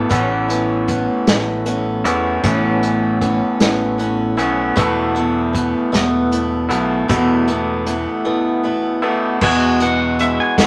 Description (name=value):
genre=folk rock and heartland rock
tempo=52 BPM (dotted quarters)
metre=6/8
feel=straight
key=A major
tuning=A4 = 440 Hz
part: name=picked swing-style acoustic guitar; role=accompaniment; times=0.0-10.7 s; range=E2 to F#4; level=-23 LUFS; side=equal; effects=none
part: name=electric guitar through a small old amp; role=riff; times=0.0-10.7 s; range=E2 to F#4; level=-21 LUFS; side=equal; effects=none
part: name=fingered electric bass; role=bass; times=0.0-10.7 s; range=E1 to E2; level=-27 LUFS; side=equal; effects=none
part: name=unplugged drum kit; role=drums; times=0.1-10.7 s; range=crash cymbal, hi-hat, kick drum, snare drum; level=-21 LUFS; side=equal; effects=none
part: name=pedal steel guitar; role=melody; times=9.4-10.7 s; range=E5 to G#5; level=-22 LUFS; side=equal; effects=none
room=moderate studio reverb, RT60 0.9 s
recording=none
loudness=-17 LUFS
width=mono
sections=0.0-9.4 A section; 9.4-10.7 B section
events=none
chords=0.1 Aadd9; 4.8 Esus4; 9.4 Eadd9